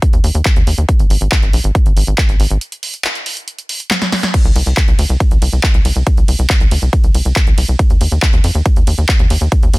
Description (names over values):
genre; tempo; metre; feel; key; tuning
uplifting trance; 139 BPM; 4/4; straight; C minor; A4 = 440 Hz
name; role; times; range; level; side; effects
electronic kick drum; drums; 0.0-9.6 s; none; -12 LUFS; equal; none
punchy analog drum machine; drums; 0.0-9.8 s; crash cymbal, handclaps, hi-hat, ride cymbal, snare drum; -19 LUFS; equal; none
tight sequencer bass; bass; 0.1-9.8 s; Ab1 to F2; -14 LUFS; equal; sidechain pumping
room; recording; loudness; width
little or no reverb; dense, heavily limited modern master; -11 LUFS; side -22 dB against mid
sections
0.0-9.8 A section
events
break 2.6-4.3; drum fill 3.9-4.3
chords
none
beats
0.02 0.46 | 0.89 1.32 1.75 2.18 | 2.61 3.04 3.48 3.91 | 4.34 4.77 5.20 5.63 | 6.07 6.50 6.93 7.36 | 7.79 8.22 8.66 9.09 | 9.52